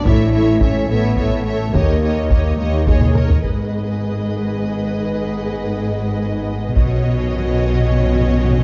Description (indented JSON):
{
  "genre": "cinematic, epic orchestral film score",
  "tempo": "72 BPM (dotted quarters)",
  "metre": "6/8",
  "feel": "straight",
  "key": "unclear",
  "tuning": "A4 = 439 Hz",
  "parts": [
    { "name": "warm symphonic violin section", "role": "melody", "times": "0.0-8.6 s", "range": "Eb5 to E5", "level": "-31 LUFS", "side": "equal", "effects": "none" },
    { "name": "rich studio violin section", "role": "second line", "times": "0.0-8.6 s", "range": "B4 to C#5", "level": "-31 LUFS", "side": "equal", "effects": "none" },
    { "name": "dark symphonic viola section", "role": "accompaniment", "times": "0.0-8.6 s", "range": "F#4 to Bb4", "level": "-30 LUFS", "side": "equal", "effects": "none" },
    { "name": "warm French horn section", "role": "sustained chords", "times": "0.0-8.6 s", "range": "D#3 to E4", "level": "-27 LUFS", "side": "equal", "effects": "none" },
    { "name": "clear symphonic cello section", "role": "bass", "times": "0.1-8.6 s", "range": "Eb2 to B2", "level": "-24 LUFS", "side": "equal", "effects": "none" },
    { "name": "rich symphonic double bass section", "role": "bass", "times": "0.1-8.6 s", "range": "G#1 to Eb2", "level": "-23 LUFS", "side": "equal", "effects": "none" },
    { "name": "taiko ensemble", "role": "drums", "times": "0.1-7.8 s", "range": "none", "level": "-19 LUFS", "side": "equal", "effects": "none" },
    { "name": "timpani", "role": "percussion", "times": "6.8-8.6 s", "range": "B2", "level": "-25 LUFS", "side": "equal", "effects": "none" },
    { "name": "reverse cymbal", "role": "sound effects", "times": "8.4-8.6 s", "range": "none", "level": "barely audible", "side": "none", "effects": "none" }
  ],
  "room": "light reverb",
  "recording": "dark, warm production, nothing above 7.6 kHz",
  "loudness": "-18 LUFS",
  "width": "mono",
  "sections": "0.0-3.4 A section; 3.4-8.6 B section",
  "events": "drum fill 3.0-3.4; timpani fill 6.8-8.6",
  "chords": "0.1 A; 1.7 Eb7; 3.4 G#m; 6.8 Badd9"
}